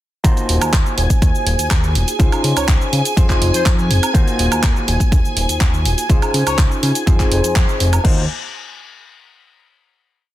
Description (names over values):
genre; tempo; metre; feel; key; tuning
filtered disco house; 123 BPM; 4/4; straight; Eb dorian; A4 = 441 Hz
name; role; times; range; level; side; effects
overdriven reed electric piano; accompaniment; 0.2-8.2 s; Bb3 to C5; -22 LUFS; left 1 dB; phaser, vintage 12-bit sampler grit, sidechain pumping
string machine, full ensemble; sustained chords; 0.2-8.1 s; Ab5; -25 LUFS; right 1 dB; phaser, ensemble chorus, sidechain pumping
fat analog bass; bass; 0.2-8.3 s; Eb1 to Db3; -19 LUFS; equal; tube saturation, sidechain pumping
electronic kick drum; drums; 0.2-8.1 s; none; -15 LUFS; equal; none
house drum kit; drums; 0.2-8.1 s; cabasa, crash cymbal, handclaps, hi-hat, woodblock; -22 LUFS; right 2 dB; sidechain pumping on hats, sidechain pumping on perc, soft clipping on snare, sidechain pumping on cymbals
analog synth brass; melody; 2.6-6.6 s; C5 to Db5; -26 LUFS; left 4 dB; chorus, cassette tape, sidechain pumping, ping-pong delay
room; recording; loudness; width
digital ambience; dense, heavily limited modern master; -13 LUFS; side -14 dB against mid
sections
0.2-8.0 drop; 8.0-10.0 final chord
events
drop 0.2-8.0; band accent 7.6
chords
0.2 Ebm69; 2.2 Dbmaj7; 3.2 Fm7; 4.1 Ebm69; 6.1 Dbmaj7; 7.1 Fm7; 8.0 N.C.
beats
| 0.24 0.73 1.22 1.71 | 2.19 2.68 3.17 3.66 | 4.15 4.63 5.12 5.61 | 6.10 6.58 7.07 7.56 | 8.05